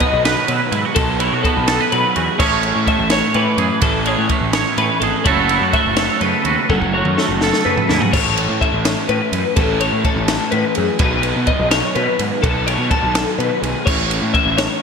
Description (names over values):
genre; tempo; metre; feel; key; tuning
math rock and midwest emo; 84 BPM (dotted quarters); 6/8; straight; A lydian; A4 = 439 Hz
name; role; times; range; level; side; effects
twangy electric guitar; accompaniment; 0.0-9.6 s; A2 to C#5; -19 LUFS; right 8 dB; analog chorus
twelve-string electric guitar; arpeggios; 0.0-14.8 s; G#4 to E5; -20 LUFS; left 4 dB; ensemble chorus
raw garage guitar; riff; 0.0-14.8 s; A2 to A4; -22 LUFS; equal; overdrive
compact cocktail drum kit; drums; 0.0-14.7 s; crash cymbal, kick drum, ride cymbal, snare drum, toms; -20 LUFS; equal; none
fuzz picked electric bass; bass; 0.1-14.7 s; F#1 to B2; -22 LUFS; equal; overdrive
room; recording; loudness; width
moderate lush hall reverb, RT60 1.7 s, studio ambience; bright 1980s-style digital production; -14 LUFS; side -6 dB against mid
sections
0.0-8.1 A section; 8.1-14.8 B section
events
drum fill 6.7-8.1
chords
0.0 B7; 2.4 Amaj7; 5.3 F#m7; 8.1 A; 11.0 B7; 13.9 A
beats
0.25 | 0.97 1.68 | 2.40 3.12 | 3.83 4.55 | 5.26 5.98 | 6.70 7.42 | 8.13 8.85 | 9.57 10.28 | 11.00 11.72 | 12.43 13.15 | 13.87 14.58